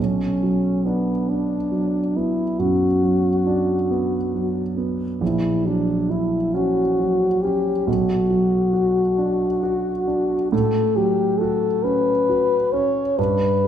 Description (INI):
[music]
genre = classical, romantic duo for French horn and grand piano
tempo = 46 BPM (dotted quarters)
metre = 12/8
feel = rubato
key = B minor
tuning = A4 = 440 Hz
[part]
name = warm French horn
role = melody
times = 0.0-13.7 s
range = B3 to C#5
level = -21 LUFS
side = left 2 dB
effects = none
[part]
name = warm grand piano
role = accompaniment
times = 0.0-13.7 s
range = A#1 to F#4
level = -21 LUFS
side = right 2 dB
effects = none
[sound]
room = wet scoring stage reverb, RT60 1.6 s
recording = minimal, uncompressed stereo recording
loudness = -18 LUFS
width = side -9 dB against mid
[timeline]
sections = 0.0-13.7 A section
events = none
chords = 0.0 Bm; 5.2 F#7/A#; 7.9 Bm; 10.5 F#m/A